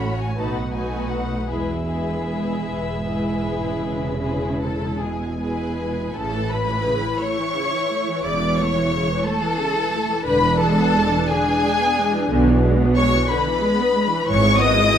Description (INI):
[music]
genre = classical, slow romantic movement for string orchestra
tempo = 50-62 BPM (dotted quarters)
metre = 12/8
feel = rubato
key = E major, A major from 6.2 s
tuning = A4 = 440 Hz
[part]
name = rich chamber violin section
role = melody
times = 0.0-15.0 s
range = E5 to D#6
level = -25 LUFS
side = left 2 dB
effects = none
[part]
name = clear studio violin section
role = second line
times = 0.0-15.0 s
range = F#4 to D#5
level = -24 LUFS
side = left 3 dB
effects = none
[part]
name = rich studio viola section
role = accompaniment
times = 0.0-15.0 s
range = C#3 to E4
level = -24 LUFS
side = right 1 dB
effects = none
[part]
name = rich chamber double bass section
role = bass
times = 0.0-15.0 s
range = E1 to B1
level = -25 LUFS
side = right 2 dB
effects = none
[part]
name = warm chamber cello section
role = bass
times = 0.0-15.0 s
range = E2 to C#3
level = -25 LUFS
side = right 2 dB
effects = none
[sound]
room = moderate recital hall reverb, RT60 1.4 s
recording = close, detailed microphones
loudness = -18 LUFS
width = side -9 dB against mid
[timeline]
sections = 0.0-6.2 A section; 6.2-15.0 B section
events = none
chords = 0.4 B7; 1.5 E; 6.2 A; 10.3 E7; 14.3 E/G#